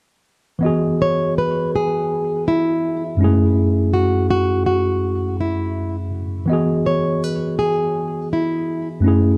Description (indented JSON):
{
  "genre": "hip hop",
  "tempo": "82 BPM",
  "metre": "4/4",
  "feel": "swing 62% on 16ths",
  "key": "E major",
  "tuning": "A4 = 440 Hz",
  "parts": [
    { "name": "mellow tine electric piano", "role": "accompaniment", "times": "0.6-9.4 s", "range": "F#2 to D#5", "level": "-21 LUFS", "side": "equal", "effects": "cassette tape" },
    { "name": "flamenco guitar", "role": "melody", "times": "1.0-8.9 s", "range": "E4 to C#5", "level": "-22 LUFS", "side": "equal", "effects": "tape echo" }
  ],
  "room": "moderate studio reverb, RT60 0.5 s",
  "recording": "dark, warm production, lossy compression artefacts",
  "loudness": "-19 LUFS",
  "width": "mono",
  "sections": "0.6-9.4 A section",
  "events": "none",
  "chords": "0.6 Emaj7; 3.2 F#m9; 6.5 Emaj7",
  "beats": "| 0.63 1.36 2.09 2.83 | 3.56 4.29 5.02 5.75 | 6.49 7.22 7.95 8.68"
}